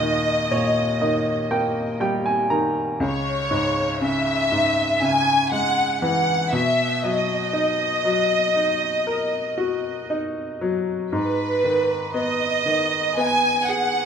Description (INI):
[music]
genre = pop ballad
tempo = 60 BPM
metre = 4/4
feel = straight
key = G# minor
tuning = A4 = 439 Hz
[part]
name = warm symphonic violin section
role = melody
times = 0.0-14.1 s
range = B4 to G#5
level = -21 LUFS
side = equal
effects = plate reverb, tape echo
[part]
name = bright upright piano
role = accompaniment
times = 0.0-14.1 s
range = C#2 to A#5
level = -23 LUFS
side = equal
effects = plate reverb
[sound]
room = wet studio reverb, RT60 0.6 s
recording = rough home demo mix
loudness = -19 LUFS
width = side -7 dB against mid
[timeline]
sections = 0.0-14.1 A section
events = upright piano fill 0.0-3.0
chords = 0.0 D#; 3.0 C#m; 6.5 Bmaj7; 11.1 G#m